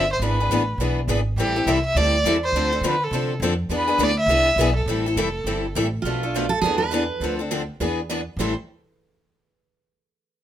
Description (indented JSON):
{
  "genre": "acoustic string swing (jazz manouche)",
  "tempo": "206 BPM",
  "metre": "4/4",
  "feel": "swing 59% on 8ths",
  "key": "A minor",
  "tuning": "A4 = 440 Hz",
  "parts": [
    { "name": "dark violin", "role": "melody", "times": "0.0-5.9 s", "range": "G4 to E5", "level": "-22 LUFS", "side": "right 1 dB", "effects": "none" },
    { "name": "picked steel-string acoustic guitar", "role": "accompaniment", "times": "0.0-8.5 s", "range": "A2 to A4", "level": "-25 LUFS", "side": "left 4 dB", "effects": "none" },
    { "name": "picked steel-string acoustic guitar", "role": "accompaniment", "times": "0.0-8.5 s", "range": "A2 to B4", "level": "-30 LUFS", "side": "right 6 dB", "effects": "none" },
    { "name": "upright bass", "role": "bass", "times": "0.0-8.5 s", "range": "F1 to D3", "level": "-25 LUFS", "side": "equal", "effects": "none" },
    { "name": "picked steel-string acoustic guitar", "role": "second line", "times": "6.0-8.5 s", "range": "F4 to C5", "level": "-24 LUFS", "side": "right 4 dB", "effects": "none" }
  ],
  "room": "light reverb",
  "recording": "minimal, uncompressed stereo recording",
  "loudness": "-19 LUFS",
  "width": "side -11 dB against mid",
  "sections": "0.0-6.0 A section; 6.0-8.4 B section; 8.4-9.6 C section",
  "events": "none",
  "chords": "0.2 E7; 1.4 Am7; 2.5 Dm7; 3.7 E7; 4.9 Am7; 6.0 Bm7b5; 6.6 E7; 7.2 Dm7; 7.8 E7; 8.4 Am7"
}